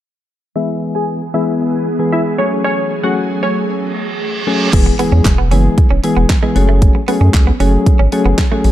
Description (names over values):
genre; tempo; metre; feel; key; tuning
dance-pop; 115 BPM; 4/4; straight; E major; A4 = 441 Hz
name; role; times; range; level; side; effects
glassy wavetable pluck; melody; 0.6-3.9 s; C#4 to G#5; -20 LUFS; equal; chorus, sidechain pumping, low-pass filter, tape echo
soft electric-piano-like synth keys; accompaniment; 0.6-8.7 s; E3 to G#4; -17 LUFS; left 2 dB; chorus, tremolo, sidechain pumping, low-pass filter
ethereal airy pad; sustained chords; 1.2-4.7 s; E3 to G#4; -22 LUFS; right 1 dB; ensemble chorus, built-in reverb, sidechain pumping, low-pass filter
reverse cymbal and impact; sound effects; 3.9-6.8 s; none; -24 LUFS; right 3 dB; none
round analog bass; bass; 4.7-8.7 s; E1 to F#2; -12 LUFS; equal; sidechain pumping
pop drum kit; drums; 4.7-8.7 s; crash cymbal, handclaps, hi-hat, kick drum, snare drum; -13 LUFS; equal; none
direct-recorded clean electric guitar; riff; 4.9-8.7 s; G#3 to C#4; -22 LUFS; right 7 dB; wide subtle chorus
room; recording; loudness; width
little or no reverb; dark, warm production; -12 LUFS; side -13 dB against mid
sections
0.6-4.7 A section; 4.7-8.7 B section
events
filter sweep 0.6-4.7; reverse cymbal 3.9-4.7; impact 4.7-6.8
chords
0.6 E; 2.4 F#madd9; 4.7 E; 6.6 F#madd9